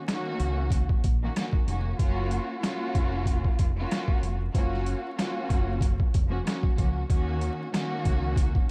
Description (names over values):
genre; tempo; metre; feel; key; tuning
hip hop, boom-bap hip-hop; 94 BPM; 4/4; swing 56% on 16ths; unclear; A4 = 436 Hz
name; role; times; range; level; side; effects
warm studio string section; accompaniment; 0.0-8.7 s; Eb3 to Gb4; -34 LUFS; equal; high-pass filter, low-pass filter
boom bap sampler-style drum kit; drums; 0.1-8.7 s; hi-hat, kick drum, rim click, snare drum; -28 LUFS; equal; overdrive
deep dub fingered electric bass; bass; 0.4-8.6 s; F1 to Eb2; -32 LUFS; equal; none
room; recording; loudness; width
little or no reverb; dark, warm production, vinyl crackle; -27 LUFS; mono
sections
0.0-8.7 A section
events
none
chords
0.0 Ebm7; 2.0 Gbmaj7; 7.1 Ebm7